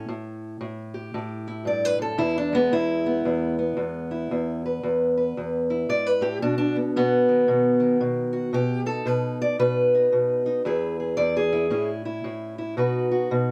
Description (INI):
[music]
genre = acoustic country blues, solo or duo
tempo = 114 BPM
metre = 4/4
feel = swing 63% on 8ths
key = E major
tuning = A4 = 439 Hz
[part]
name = fingerpicked steel-string acoustic guitar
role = solo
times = 0.0-13.5 s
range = E2 to D5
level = -24 LUFS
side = equal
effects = none
[sound]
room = little or no reverb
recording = close, detailed microphones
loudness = -24 LUFS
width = mono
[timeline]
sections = 0.0-13.5 A section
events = steel-string acoustic guitar solo 0.0-13.5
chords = 0.1 A5; 2.2 E; 6.4 B; 10.6 E; 11.7 A; 12.8 B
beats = | 0.07 0.60 1.13 1.66 | 2.18 2.71 3.24 3.77 | 4.30 4.83 5.35 5.88 | 6.41 6.94 7.47 8.00 | 8.53 9.06 9.59 10.11 | 10.64 11.17 11.70 12.23 | 12.76 13.29